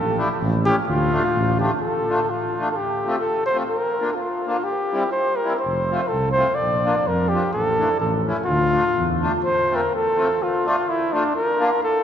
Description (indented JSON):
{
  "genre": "alpine folk, alpine dance band",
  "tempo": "127 BPM",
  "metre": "2/4",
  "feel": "straight",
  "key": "D minor",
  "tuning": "A4 = 445 Hz",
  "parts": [
    { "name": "warm flugelhorn", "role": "melody", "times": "0.0-12.0 s", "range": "D4 to D5", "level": "-21 LUFS", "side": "left 1 dB", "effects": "none" },
    { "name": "dark tuba", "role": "bass", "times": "0.0-1.7, 5.7-9.3 s", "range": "F1 to F2", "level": "-25 LUFS", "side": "right 1 dB", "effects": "none" },
    { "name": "accordion", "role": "accompaniment", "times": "0.2-11.7 s", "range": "G3 to F4", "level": "-25 LUFS", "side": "equal", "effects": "none" }
  ],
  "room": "wet cathedral reverb, RT60 5.1 s",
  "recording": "recorded in a church or concert hall",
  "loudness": "-19 LUFS",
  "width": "side -9 dB against mid",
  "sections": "0.0-1.8 A section; 1.8-9.4 A section; 9.4-12.0 B section",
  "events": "none",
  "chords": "0.4 A7; 0.9 Dm; 2.8 F; 3.7 Bb; 4.7 C; 5.7 F; 6.6 Bb; 7.5 Asus4; 8.0 A; 8.5 Dmadd9; 9.4 F; 10.4 Dm; 11.4 Bb"
}